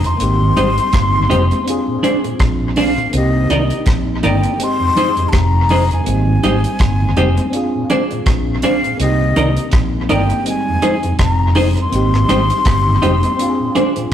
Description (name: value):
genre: lovers rock reggae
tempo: 82 BPM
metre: 4/4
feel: swing 57% on 16ths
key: unclear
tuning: A4 = 439 Hz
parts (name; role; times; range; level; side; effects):
- breathy jazz flute; melody; 0.0-13.9 s; Eb5 to C6; -20 LUFS; left 2 dB; none
- FM electric piano; accompaniment; 0.0-14.1 s; G3 to Ab4; -22 LUFS; left 1 dB; chorus, phaser, dub echo
- mellow tonewheel organ; accompaniment; 0.0-14.1 s; F2 to Eb4; -23 LUFS; equal; chorus vibrato, slow rotary speaker, dub echo
- deep reggae drum kit; drums; 0.0-14.1 s; hi-hat, kick drum, rim click; -19 LUFS; equal; dub echo
- fretless electric bass; bass; 0.2-13.2 s; F1 to C2; -17 LUFS; equal; none
- twelve-string electric guitar; stabs; 0.6-14.0 s; D4 to D5; -19 LUFS; right 1 dB; harmonic tremolo
room: wet stone room reverb, RT60 1.4 s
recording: rough rehearsal-room recording, tube saturation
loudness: -13 LUFS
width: side -10 dB against mid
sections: 0.0-14.1 A section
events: none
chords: 0.2 Abmaj7; 1.7 Bb9; 3.1 Cm9; 4.6 Fm7; 6.1 Abmaj7; 7.5 Bb9; 9.0 Cm9; 10.5 Fm7; 11.9 Abmaj7; 13.4 Bb9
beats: | 0.20 0.93 1.67 2.40 | 3.13 3.87 4.60 5.33 | 6.06 6.80 7.53 8.26 | 8.99 9.73 10.46 11.19 | 11.93 12.66 13.39 14.12